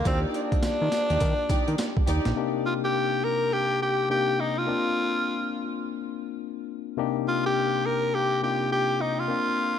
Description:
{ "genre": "R&B, new jack swing", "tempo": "104 BPM", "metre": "4/4", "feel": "swing 63% on 16ths", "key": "C minor", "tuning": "A4 = 440 Hz", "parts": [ { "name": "raspy tenor saxophone", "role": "melody", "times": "0.0-9.8 s", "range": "C4 to Bb4", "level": "-26 LUFS", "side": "equal", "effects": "tape echo" }, { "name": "barky tine electric piano", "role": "accompaniment", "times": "0.0-9.8 s", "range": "C3 to G4", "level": "-29 LUFS", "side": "moving between left 12 dB and left 4 dB", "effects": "auto-pan" }, { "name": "fat analog bass", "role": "bass", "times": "0.0-2.3 s", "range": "Bb1 to Eb3", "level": "-27 LUFS", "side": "right 1 dB", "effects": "none" }, { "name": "warm studio string section", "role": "stabs", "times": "0.1-2.2 s", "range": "Eb4 to D5", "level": "-33 LUFS", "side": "right 2 dB", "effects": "tape echo" }, { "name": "boom bap sampler-style drum kit", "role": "drums", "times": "0.1-2.4 s", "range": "hi-hat, kick drum, snare drum, tambourine", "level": "-27 LUFS", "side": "right 1 dB", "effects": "overdrive" } ], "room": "moderate echo chamber reverb, RT60 2.3 s", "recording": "dark, warm production", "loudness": "-23 LUFS", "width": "side -8 dB against mid", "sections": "0.0-2.4 A section; 2.4-9.8 B section", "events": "none", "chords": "0.1 Ebmaj7; 2.4 Cm7; 4.7 Bbadd9; 7.0 Cm7; 9.3 Bbadd9" }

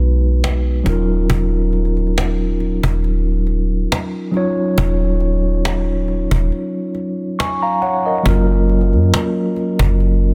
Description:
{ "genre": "contemporary R&B", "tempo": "69 BPM", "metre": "4/4", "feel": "swing 54% on 16ths", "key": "Eb minor", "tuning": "A4 = 440 Hz", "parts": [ { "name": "mellow tine electric piano", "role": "accompaniment", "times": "0.0-10.3 s", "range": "Gb3 to Db6", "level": "-21 LUFS", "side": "equal", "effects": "none" }, { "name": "soft 808-style bass", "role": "bass", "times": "0.0-10.3 s", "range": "Eb1 to Gb2", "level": "-18 LUFS", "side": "equal", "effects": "none" }, { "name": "cajon", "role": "drums", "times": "0.4-10.1 s", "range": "none", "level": "-23 LUFS", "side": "equal", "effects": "none" } ], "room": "studio reverb", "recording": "dense, heavily limited modern master", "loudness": "-17 LUFS", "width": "mono", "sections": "0.0-8.3 A section; 8.3-10.3 B section", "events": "kick muted 6.5-8.3", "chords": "0.0 B6; 0.9 Ebm9; 8.3 Gbmaj7" }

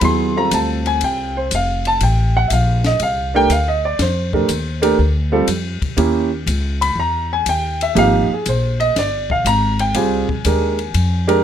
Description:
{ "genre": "modal jazz", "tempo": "121 BPM", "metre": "4/4", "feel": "swing 69% on 8ths", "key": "Ab lydian from 8.0 s", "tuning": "A4 = 445 Hz", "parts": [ { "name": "warm baby grand piano", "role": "accompaniment", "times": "0.0-11.4 s", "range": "F3 to C6", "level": "-17 LUFS", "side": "right 2 dB", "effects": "none" }, { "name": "upright bass", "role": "bass", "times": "0.0-11.4 s", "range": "F1 to F2", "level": "-19 LUFS", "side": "left 1 dB", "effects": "none" }, { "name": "compact cocktail drum kit", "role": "drums", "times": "0.0-11.4 s", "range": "hi-hat, kick drum, ride cymbal, snare drum", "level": "-26 LUFS", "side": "left 4 dB", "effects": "none" } ], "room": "light reverb", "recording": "close, detailed microphones", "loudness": "-15 LUFS", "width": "side -9 dB against mid", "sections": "0.0-8.0 A section; 8.0-11.4 A section", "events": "none", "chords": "0.0 Dm7; 6.0 Eb7b9; 8.0 Abmaj9" }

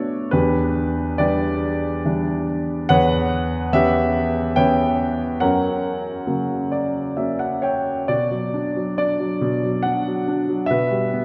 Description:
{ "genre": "classical, lyrical solo piano", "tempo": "70 BPM", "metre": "3/4", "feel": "rubato", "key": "B minor", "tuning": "A4 = 440 Hz", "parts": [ { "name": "warm grand piano", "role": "solo", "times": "0.0-11.2 s", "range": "E2 to G5", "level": "-21 LUFS", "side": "equal", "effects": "none" } ], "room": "wet church reverb, RT60 2.7 s", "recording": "recorded in a church or concert hall, nothing above 10.7 kHz", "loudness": "-21 LUFS", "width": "mono", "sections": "0.0-8.1 A section; 8.1-11.2 B section", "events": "grand piano fill 6.3-8.1", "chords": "0.3 Em7; 2.9 C#m7b5/E; 5.4 F#; 8.1 Bm; 10.7 G/B" }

